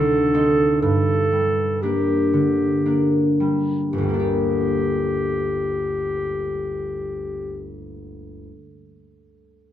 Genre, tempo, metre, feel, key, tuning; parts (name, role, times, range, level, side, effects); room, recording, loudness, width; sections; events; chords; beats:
classical, romantic duo for clarinet and harp; 54-68 BPM; 3/4; rubato; G minor; A4 = 439 Hz
clear clarinet; melody; 0.0-7.7 s; G4 to A4; -23 LUFS; equal
concert harp; accompaniment; 0.0-8.6 s; G1 to G4; -21 LUFS; equal
light reverb; dark, warm production; -18 LUFS; side -11 dB against mid
0.0-3.9 A section; 3.9-7.0 B section
slowing down 0.0-3.9
0.0 D5; 0.8 Gm
| 0.81 1.82 2.85 | 3.92 4.96 5.99